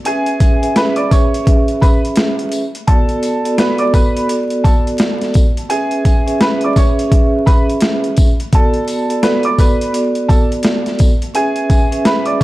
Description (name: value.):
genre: hip hop, boom-bap hip-hop.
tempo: 85 BPM.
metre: 4/4.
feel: swing 62% on 16ths.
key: unclear.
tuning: A4 = 440 Hz.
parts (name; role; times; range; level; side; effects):
vibraphone with soft mallets; accompaniment; 0.0-12.4 s; B3 to E5; -17 LUFS; right 1 dB; cassette tape, high-pass filter, low-pass filter.
bright upright piano; melody; 0.1-12.4 s; G#4 to D6; -20 LUFS; right 1 dB; high-pass filter, low-pass filter, digital delay.
boom bap sampler-style drum kit; drums; 0.1-12.4 s; hi-hat, kick drum, snare drum; -13 LUFS; equal; overdrive.
tambourine; percussion; 0.4-12.4 s; none; -34 LUFS; left 2 dB; none.
room: little or no reverb.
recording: dark, warm production, vinyl crackle.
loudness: -12 LUFS.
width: side -17 dB against mid.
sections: 0.0-12.4 A section.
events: none.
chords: 0.1 C#m7; 2.9 Bm7; 5.7 C#m7; 8.5 Bm7; 11.3 C#m7.